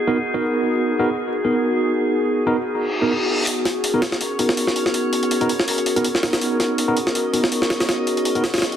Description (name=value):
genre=drum and bass, jungle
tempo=163 BPM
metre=4/4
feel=swing 55% on 16ths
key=G# minor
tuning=A4 = 440 Hz
part: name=warbly tape-like pad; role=sustained chords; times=0.0-8.8 s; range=B3 to A#4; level=-25 LUFS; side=left 2 dB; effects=chorus, built-in reverb, vintage 12-bit sampler grit
part: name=drifting glass-harmonics texture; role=texture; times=0.0-8.8 s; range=C#4 to D#5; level=-27 LUFS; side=left 1 dB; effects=chorus, built-in reverb
part: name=tine electric piano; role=stabs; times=0.1-8.4 s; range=B3 to A#4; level=-22 LUFS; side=right 1 dB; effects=medium stereo tremolo, low-pass filter, dub echo
part: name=reverse cymbal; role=sound effects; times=2.8-3.5 s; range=none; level=-24 LUFS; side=left 1 dB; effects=none
part: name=jungle sampler-style drum kit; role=drums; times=3.5-8.8 s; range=hi-hat, snare drum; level=-22 LUFS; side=equal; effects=studio reverb
room=moderate plate reverb, RT60 1.1 s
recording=dense, heavily limited modern master, vinyl crackle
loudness=-18 LUFS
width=side -9 dB against mid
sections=0.0-8.8 A section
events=reverse cymbal 2.8-3.5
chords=0.0 G#m9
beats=0.16 | 0.53 0.89 1.26 1.63 | 2.00 2.37 2.73 3.10 | 3.47 3.84 4.21 4.58 | 4.94 5.31 5.68 6.05 | 6.42 6.78 7.15 7.52 | 7.89 8.26 8.62